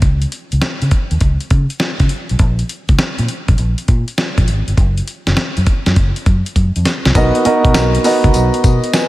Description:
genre	R&B, new jack swing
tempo	101 BPM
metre	4/4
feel	swing 66% on 16ths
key	unclear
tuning	A4 = 440 Hz
part	vintage muted fingered electric bass	bass	0.0-8.8 s	F#1 to C#3	-15 LUFS	equal	none
part	dusty soul sampler-style drum kit	drums	0.0-9.1 s	hi-hat, kick drum, snare drum, tambourine	-15 LUFS	equal	none
part	warm concert grand piano	accompaniment	7.2-9.1 s	B3 to G#5	-13 LUFS	right 1 dB	none
room	light reverb, digital ambience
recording	none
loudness	-12 LUFS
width	side -17 dB against mid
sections	0.0-7.2 A section; 7.2-9.1 B section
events	drum fill 6.6-7.2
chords	0.0 N.C.; 7.2 Bmaj7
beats	| 0.02 0.62 1.21 1.81 | 2.40 3.00 3.59 4.18 | 4.78 5.37 5.96 6.56 | 7.15 7.75 8.34 8.94

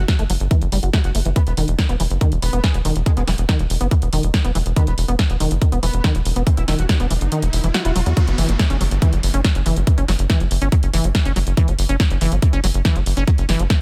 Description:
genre	psychedelic trance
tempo	141 BPM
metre	4/4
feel	straight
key	unclear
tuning	A4 = 440 Hz
part	metallic wobble bass	second line	0.0-7.9 s	G#3 to F#4	-35 LUFS	equal	chorus, sidechain pumping, high-pass filter, tape echo
part	liquid acid bass	riff	0.0-13.6 s	D#3 to F#4	-27 LUFS	equal	chorus, sidechain pumping, delay
part	tight sequencer bass	bass	0.0-13.7 s	E1 to E2	-21 LUFS	equal	none
part	electronic kick drum	drums	0.1-13.8 s	none	-19 LUFS	equal	overdrive
part	techno drum kit	drums	0.1-13.8 s	hi-hat, snare drum	-27 LUFS	equal	none
part	riser and downlifter	sound effects	6.3-11.6 s	none	-34 LUFS	equal	none
room	digital ambience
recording	none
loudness	-18 LUFS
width	mono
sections	0.0-8.2 A section; 8.2-13.8 B section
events	filter sweep on acid bass 0.0-8.2; riser 6.3-8.2; kick drops out 7.3-8.2; drop 8.2-13.8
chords	0.0 F#7(no3); 1.4 E5; 8.2 F#5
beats	0.08 0.51 0.94 | 1.36 1.79 2.21 2.64 | 3.06 3.49 3.91 4.34 | 4.76 5.19 5.62 6.04 | 6.47 6.89 7.32 7.74 | 8.17 8.59 9.02 9.45 | 9.87 10.30 10.72 11.15 | 11.57 12.00 12.42 12.85 | 13.28 13.70

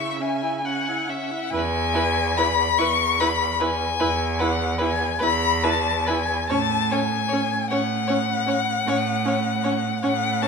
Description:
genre	classical, slow romantic movement for string quartet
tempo	45-53 BPM (dotted quarters)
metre	12/8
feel	rubato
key	E major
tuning	A4 = 440 Hz
part	dark violin	melody	0.0-10.5 s	E5 to C#6	-23 LUFS	left 8 dB	none
part	rich violin	second line	0.0-10.5 s	B4 to G#5	-28 LUFS	left 2 dB	none
part	warm viola	accompaniment	0.0-10.5 s	C#4 to E4	-29 LUFS	right 5 dB	none
part	rich cello	bass	0.0-10.5 s	E2 to C#3	-26 LUFS	right 6 dB	none
room	wet recital hall reverb, RT60 1.5 s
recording	minimal, uncompressed stereo recording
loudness	-20 LUFS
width	side -5 dB against mid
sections	0.0-1.5 A section; 1.5-10.5 B section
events	none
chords	0.0 C#m; 1.5 E; 6.5 F#m/A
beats	0.21 | 1.52 2.79 4.00 5.21 | 6.49 7.70 8.85 10.02

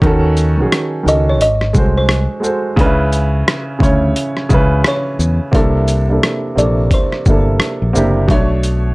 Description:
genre	lo-fi hip hop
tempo	87 BPM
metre	4/4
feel	swing 62% on 16ths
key	unclear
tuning	A4 = 440 Hz
part	warm upright piano	accompaniment	0.0-8.9 s	B2 to C#5	-16 LUFS	right 1 dB	cassette tape, low-pass filter
part	fingered electric bass	bass	0.0-8.9 s	F#1 to E2	-15 LUFS	equal	none
part	boom bap sampler-style drum kit	drums	0.0-8.8 s	hi-hat, kick drum, rim click, shaker	-15 LUFS	equal	overdrive
part	buzzing kalimba	melody	1.1-8.9 s	B#4 to E5	-20 LUFS	equal	low-pass filter
room	light reverb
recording	cassette tape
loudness	-12 LUFS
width	side -23 dB against mid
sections	0.0-8.9 A section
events	none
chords	0.0 D#m7b5; 1.4 G#7b9; 2.8 C#m7; 5.5 C13; 8.3 Bm9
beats	| 0.01 0.70 1.39 2.08 | 2.77 3.46 4.15 4.84 | 5.53 6.22 6.91 7.60 | 8.29

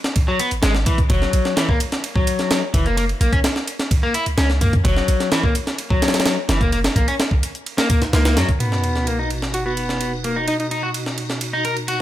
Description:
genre	breakbeat, breaks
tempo	128 BPM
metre	4/4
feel	straight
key	F# mixolydian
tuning	A4 = 440 Hz
part	breakbeat sampler-style drum kit	drums	0.0-12.0 s	kick drum, ride cymbal, snare drum	-20 LUFS	equal	high-pass filter on snare, studio reverb, high-pass filter on cymbals, high-pass filter on kick
part	electronic hi-hat	drums	0.0-8.6 s	none	-32 LUFS	left 2 dB	studio reverb
part	electric guitar at the edge of break-up	riff	0.3-12.0 s	E3 to A#4	-22 LUFS	left 2 dB	low-pass filter, ping-pong delay
part	warm 808-style bass	bass	0.5-8.4 s	F#1 to F#2	-19 LUFS	equal	none
part	tonewheel organ	sustained chords	8.6-12.0 s	B2 to F#4	-27 LUFS	right 1 dB	chorus vibrato, fast rotary speaker, sidechain pumping
part	sub drop	sound effects	8.6-10.5 s	none	-25 LUFS	equal	none
part	breathy alto saxophone	melody	9.5-10.7 s	D#4 to F#4	-28 LUFS	equal	AM radio sound, ping-pong delay
room	digital ambience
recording	none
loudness	-17 LUFS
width	side -13 dB against mid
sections	0.0-8.6 A section; 8.6-12.0 B section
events	impact 8.6-10.5; filter sweep on clean electric guitar 8.6-12.0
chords	0.0 N.C.; 1.1 F#; 8.6 B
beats	0.16 0.63 | 1.10 1.57 2.04 2.51 | 2.97 3.44 3.91 4.38 | 4.85 5.32 5.79 6.26 | 6.72 7.19 7.66 8.13 | 8.60 9.07 9.54 10.01 | 10.47 10.94 11.41 11.88

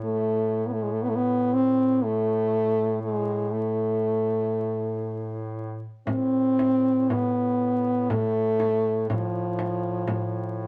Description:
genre	caucasian folk, Caucasian lament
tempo	60 BPM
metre	3/4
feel	rubato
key	A harmonic minor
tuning	A4 = 442 Hz
part	warm French horn	melody	0.0-10.7 s	F3 to C4	-26 LUFS	equal	none
part	mellow duduk	drone	0.0-10.7 s	A2	-35 LUFS	equal	none
part	frame drum	percussion	6.1-10.3 s	none	-33 LUFS	equal	none
room	light reverb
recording	vinyl crackle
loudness	-25 LUFS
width	mono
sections	0.0-10.7 A section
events	none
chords	none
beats	| 0.04 1.02 2.01 | 3.01 4.00 5.03 | 6.07 7.09 8.09 | 9.09 10.06

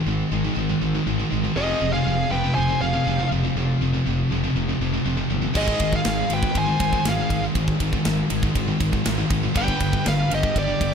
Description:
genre	heavy metal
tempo	120 BPM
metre	4/4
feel	straight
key	unclear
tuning	A4 = 440 Hz
part	high-gain distorted guitar	riff	0.0-10.9 s	F2 to Ab3	-26 LUFS	left 10 dB	distortion
part	high-gain distorted guitar	riff	0.0-10.9 s	F2 to Ab3	-27 LUFS	right 11 dB	distortion
part	scooped high-gain guitar	riff	0.0-10.9 s	F2 to Ab3	-29 LUFS	equal	distortion
part	fuzz fingered electric bass	bass	0.1-10.9 s	F1 to Ab1	-27 LUFS	equal	overdrive
part	high-gain lead guitar	melody	1.6-10.9 s	D5 to Ab5	-25 LUFS	equal	distortion, tape echo
part	smooth overdriven lead guitar	second line	1.6-10.9 s	G4 to C5	-33 LUFS	right 6 dB	none
part	tight metal drum kit	drums	5.6-10.9 s	crash cymbal, kick drum, ride cymbal, snare drum	-25 LUFS	equal	none
room	studio ambience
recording	dark, warm production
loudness	-20 LUFS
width	side -7 dB against mid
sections	0.0-10.9 A section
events	none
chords	0.0 Ab5; 1.6 Fm; 5.6 Ab5; 9.6 G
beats	0.07 0.57 1.07 | 1.57 2.07 2.57 3.06 | 3.56 4.06 4.56 5.06 | 5.56 6.06 6.56 7.06 | 7.56 8.06 8.56 9.06 | 9.56 10.06 10.56

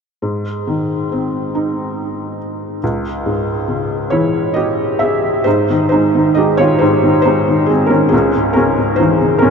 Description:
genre	classical, lyrical solo piano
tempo	46 BPM (dotted quarters)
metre	6/8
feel	rubato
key	Ab major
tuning	A4 = 435 Hz
part	felt-muted upright piano	solo	0.2-9.5 s	Db2 to Fb5	-13 LUFS	equal	none
room	wet huge ambient reverb, RT60 7.2 s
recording	in a vast, echoing space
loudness	-13 LUFS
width	side -6 dB against mid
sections	0.2-5.5 A section; 5.5-9.5 B section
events	none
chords	0.2 Ab; 2.8 Dbm; 5.5 Ab; 8.1 Dbm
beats	| 0.22 1.54 | 2.82 4.11 | 5.45 6.81 | 8.13 9.43

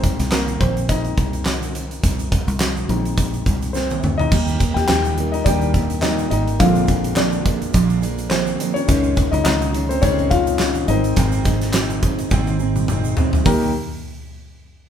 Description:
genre	piano-driven pop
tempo	105 BPM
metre	4/4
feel	swing 56% on 16ths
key	Eb major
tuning	A4 = 445 Hz
part	warm concert grand piano	accompaniment	0.0-13.7 s	Eb2 to G5	-22 LUFS	left 4 dB	none
part	fingered electric bass	bass	0.0-13.7 s	Ab1 to Eb2	-22 LUFS	equal	none
part	huge arena drum kit	drums	0.0-13.6 s	crash cymbal, handclaps, hi-hat, kick drum, snare drum, toms	-20 LUFS	equal	none
part	tube shaker	percussion	0.2-13.7 s	none	-36 LUFS	right 4 dB	none
part	fingerpicked steel-string acoustic guitar	riff	4.3-13.7 s	Ab2 to Ab4	-23 LUFS	right 5 dB	none
room	moderate large studio reverb, RT60 1.0 s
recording	band playing live in one room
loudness	-16 LUFS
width	side -9 dB against mid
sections	0.0-4.3 A section; 4.3-13.5 B section; 13.5-14.9 C section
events	grand piano solo 0.0-4.3, 4.3-13.5; drum fill 3.7-4.3, 12.3-13.5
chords	0.0 Ab; 4.3 Eb; 6.6 Bb7; 8.9 Dbsus2; 10.9 Ab; 13.5 Eb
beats	0.32 0.89 1.47 | 2.04 2.61 3.18 3.75 | 4.32 4.89 5.46 6.03 | 6.60 7.17 7.75 8.32 | 8.89 9.46 10.03 10.60 | 11.17 11.74 12.31 12.89 | 13.46

